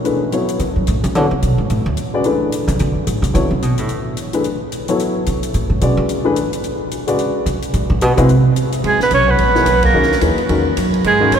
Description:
modal jazz; 218 BPM; 4/4; swing 59% on 8ths; B dorian; A4 = 440 Hz
warm baby grand piano; accompaniment; 0.0-11.3 s; C#3 to D5; -19 LUFS; left 2 dB
compact cocktail drum kit; drums; 0.0-11.4 s; hi-hat, kick drum, ride cymbal, snare drum; -30 LUFS; left 1 dB
upright bass; bass; 0.6-11.4 s; A#1 to D3; -17 LUFS; right 1 dB
clear alto saxophone; second line; 8.8-11.4 s; G#3 to C#4; -20 LUFS; right 6 dB
breathy soprano saxophone; melody; 8.9-11.4 s; G#4 to C#5; -15 LUFS; right 2 dB
wet cathedral reverb, RT60 6.3 s; recorded in a church or concert hall; -14 LUFS; side -8 dB against mid
0.0-8.8 A section; 8.8-11.4 B section
upright bass solo 0.0-8.8; band accent 9.8
0.0 Bm9; 4.4 F#madd9; 7.7 G#(#9) (rootless); 8.8 C#m69

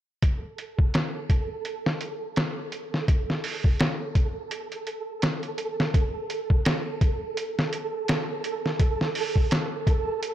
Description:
trip hop; 84 BPM; 4/4; swing 57% on 16ths; A4 = 440 Hz
trip hop sampler-style drum kit; drums; 0.2-10.3 s; hi-hat, kick drum, snare drum; -24 LUFS; equal; low-pass filter on hats, studio reverb, low-pass filter on kick, low-pass filter on snare
flickering grainy texture; texture; 0.4-10.3 s; A4; -32 LUFS; right 4 dB; built-in reverb
light reverb, digital ambience; -24 LUFS; side -12 dB against mid
0.2-10.3 A section

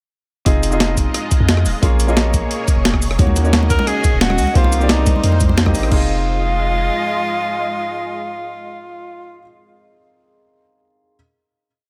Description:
liquid drum and bass; 176 BPM; 4/4; straight; F minor; A4 = 441 Hz
clear grand piano; accompaniment; 0.5-11.2 s; Bb3 to Eb5; -26 LUFS; equal; digital delay
lush unison pad; sustained chords; 0.5-9.4 s; Ab3 to Eb5; -29 LUFS; equal; chorus, phaser, vintage 12-bit sampler grit, sidechain pumping
long sustained 808-style bass; bass; 0.5-6.9 s; Eb1 to F2; -20 LUFS; equal
breakbeat sampler-style drum kit; drums; 0.5-6.0 s; crash cymbal, hi-hat, rim click, shaker, snare drum; -22 LUFS; equal
electronic kick drum; drums; 0.5-6.0 s; -19 LUFS; equal
congas; percussion; 3.2-5.8 s; -27 LUFS; equal
clear tenor saxophone; melody; 3.7-9.4 s; Eb4 to Bb4; -24 LUFS; equal; tape echo
digital ambience; -16 LUFS; mono
0.5-5.9 drop; 5.9-8.6 final chord
drop 0.5-5.9
0.5 Fm7; 1.8 Bbm7; 3.2 Ebm7; 4.6 Cm7; 5.9 Fm7

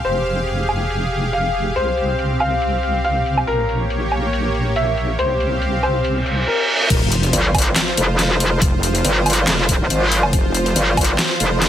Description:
heavy wobble dubstep; 140 BPM; 4/4; swing 54% on 16ths, half-time; F minor; A4 = 440 Hz
clear grand piano; melody; 0.0-6.8 s; Bb4 to F5; -22 LUFS; left 2 dB; digital delay
supersaw pad; sustained chords; 0.0-11.7 s; F3 to F5; -23 LUFS; equal; sidechain pumping
wobble bass; bass; 0.0-10.7 s; F1 to C2; -21 LUFS; equal; chorus, overdrive
dubstep drum kit; drums; 0.0-11.7 s; crash cymbal, handclaps, hi-hat, snare drum, woodblock; -21 LUFS; equal; overdrive, low-pass filter on hats, low-pass filter on perc, low-pass filter on cymbals, low-pass filter on snare
reverse cymbal and sub drop; sound effects; 6.2-8.6 s; -21 LUFS; right 2 dB
electronic kick drum; drums; 6.9-11.1 s; -18 LUFS; equal; overdrive
metallic wobble bass; bass; 7.3-11.7 s; F1 to Ab1; -16 LUFS; equal; chorus, overdrive
light reverb, digital ambience; -16 LUFS; side -10 dB against mid
0.0-6.9 A section; 6.9-11.7 B section
reverse cymbal 6.2-6.9; drop 6.9-11.7; impact 6.9-8.6
0.0 Fmadd9; 1.8 Csus4; 3.5 Gdim/Bb; 5.2 Csus4; 6.9 F5

